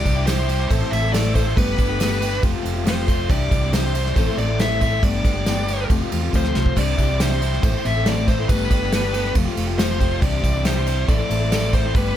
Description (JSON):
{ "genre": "folk rock and heartland rock", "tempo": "139 BPM", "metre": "4/4", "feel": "straight", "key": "C major", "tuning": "A4 = 440 Hz", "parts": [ { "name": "bluesy overdriven lead guitar", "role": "melody", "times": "0.0-12.2 s", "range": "B4 to E5", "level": "-25 LUFS", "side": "left 3 dB", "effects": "distortion" }, { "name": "picked steel-string acoustic guitar", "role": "accompaniment", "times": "0.0-12.2 s", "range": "G2 to A4", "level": "-27 LUFS", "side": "left 4 dB", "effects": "none" }, { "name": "mellow tonewheel organ", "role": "sustained chords", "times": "0.0-12.2 s", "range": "G4 to E6", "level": "-37 LUFS", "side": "left 1 dB", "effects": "none" }, { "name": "crunchy overdriven guitar", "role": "riff", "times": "0.0-12.2 s", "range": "F2 to A4", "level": "-28 LUFS", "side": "right 2 dB", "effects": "none" }, { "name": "hollow-body short-scale fingered electric bass", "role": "bass", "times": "0.0-12.2 s", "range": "F1 to E2", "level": "-23 LUFS", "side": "right 1 dB", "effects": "none" }, { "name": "soft brush drum kit", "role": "drums", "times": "0.1-12.1 s", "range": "crash cymbal, kick drum, snare drum", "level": "-22 LUFS", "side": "right 1 dB", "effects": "none" }, { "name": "tambourine", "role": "percussion", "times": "0.1-12.0 s", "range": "none", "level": "-40 LUFS", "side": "right 9 dB", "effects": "none" } ], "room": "little or no reverb", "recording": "none", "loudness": "-17 LUFS", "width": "side -11 dB against mid", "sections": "0.0-12.2 A section", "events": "drum fill 6.3-6.8", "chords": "0.0 Cadd9; 0.7 Am; 1.6 Gadd9; 2.4 Fadd9; 3.3 Cadd9; 4.2 Am; 5.0 Gadd9; 5.9 Fadd9; 6.8 Cadd9; 7.6 Am; 8.5 Gadd9; 9.4 Fadd9; 10.2 Cadd9; 11.1 Am" }